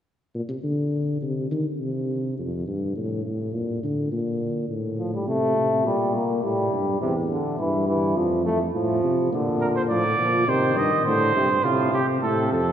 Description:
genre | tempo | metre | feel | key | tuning
classical, imitative canzona for brass ensemble | 104 BPM | 4/4 | straight | unclear | A4 = 440 Hz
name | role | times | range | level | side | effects
warm tuba | bass | 0.3-12.7 s | E2 to Eb3 | -25 LUFS | left 1 dB | none
clear euphonium | accompaniment | 5.0-12.7 s | A2 to Bb3 | -23 LUFS | equal | none
mellow trumpet | second line | 9.6-12.7 s | F4 to Eb5 | -22 LUFS | right 3 dB | none
room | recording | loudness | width
wet cathedral reverb, RT60 4.8 s | heard from further back in the room | -21 LUFS | side -9 dB against mid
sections
0.1-12.7 A section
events
none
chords
0.1 N.C.; 2.4 F; 3.5 Bb; 4.7 F/A (rootless); 5.9 Gm/Bb; 7.0 C/E (rootless); 8.2 F; 9.3 Bb; 10.5 Cm; 11.6 F/A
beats
| 0.06 0.65 1.23 1.81 | 2.39 2.97 3.54 4.12 | 4.70 5.27 5.85 6.43 | 7.01 7.59 8.17 8.75 | 9.32 9.90 10.48 11.06 | 11.65 12.23

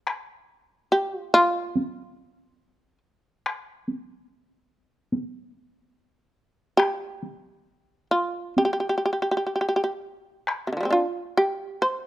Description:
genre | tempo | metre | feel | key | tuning
japanese traditional, Japanese chamber music | 60-73 BPM | 4/4 | rubato | G in sen | A4 = 440 Hz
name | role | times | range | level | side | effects
taiko ensemble | percussion | 0.1-10.7 s | none | -27 LUFS | equal | none
shamisen | melody | 0.9-12.1 s | C3 to C5 | -22 LUFS | equal | none
room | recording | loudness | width
light reverb | close, detailed microphones | -23 LUFS | side -15 dB against mid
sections
0.0-10.5 A section; 10.5-12.1 B section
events
none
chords
none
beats
| 0.06 0.92 1.76 2.60 | 3.44 4.29 5.12 5.95 | 6.79 7.67 8.56 9.52 | 10.48 11.40

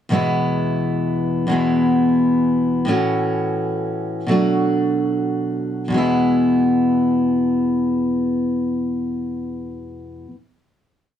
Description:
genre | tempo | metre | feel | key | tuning
acoustic folk duo or small band | free time | none | none | E mixolydian | A4 = 443 Hz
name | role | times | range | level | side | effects
picked steel-string acoustic guitar | solo | 0.1-10.4 s | E2 to F#4 | -17 LUFS | equal | none
room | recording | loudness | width
light reverb | dark, warm production | -17 LUFS | side -9 dB against mid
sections
0.1-5.9 interlude; 5.9-9.5 final chord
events
slowing down 2.9-5.9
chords
0.1 E; 2.9 A6; 4.3 Bm7; 5.9 E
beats
free time

